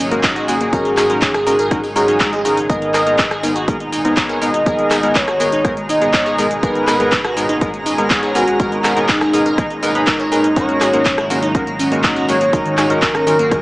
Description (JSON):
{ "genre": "progressive house", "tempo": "122 BPM", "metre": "4/4", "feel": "straight", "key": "G# minor", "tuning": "A4 = 436 Hz", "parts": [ { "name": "supersaw pad", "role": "sustained chords", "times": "0.0-13.6 s", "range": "A#2 to G#4", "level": "-25 LUFS", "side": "equal", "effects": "sidechain pumping" }, { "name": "glassy wavetable pluck", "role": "arpeggios", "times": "0.0-13.6 s", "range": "D#3 to D#5", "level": "-23 LUFS", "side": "equal", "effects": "chorus, sidechain pumping, tape echo" }, { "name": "plucky analog bass", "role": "bass", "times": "0.0-13.6 s", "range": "G#1", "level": "-30 LUFS", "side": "equal", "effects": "sidechain pumping" }, { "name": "house drum kit", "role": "drums", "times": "0.0-13.6 s", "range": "handclaps, hi-hat, rim click, shaker", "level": "-20 LUFS", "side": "equal", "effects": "sidechain pumping on hats, sidechain pumping on perc" }, { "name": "chorused polysynth", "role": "stabs", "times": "0.1-13.6 s", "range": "G#2 to D#5", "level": "-19 LUFS", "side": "equal", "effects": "sidechain pumping" }, { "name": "electronic kick drum", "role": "drums", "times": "0.2-13.6 s", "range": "none", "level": "-20 LUFS", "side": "equal", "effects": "none" }, { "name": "warm velvety synth lead", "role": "melody", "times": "0.5-13.6 s", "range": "D#4 to D#5", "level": "-18 LUFS", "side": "equal", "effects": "chorus, sidechain pumping" }, { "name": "swell", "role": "sound effects", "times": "1.9-2.7 s", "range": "none", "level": "-28 LUFS", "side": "equal", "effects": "none" }, { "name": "twinkling granular texture", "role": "texture", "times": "3.4-13.6 s", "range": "A#5", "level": "-29 LUFS", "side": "right 1 dB", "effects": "built-in reverb, sidechain pumping" } ], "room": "light reverb", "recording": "small speaker sound", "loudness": "-13 LUFS", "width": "side -20 dB against mid", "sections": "0.0-13.6 A section", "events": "swell 1.9-2.7", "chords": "0.0 D#m7/G#; 2.7 G#madd9; 10.6 D#m7/G#" }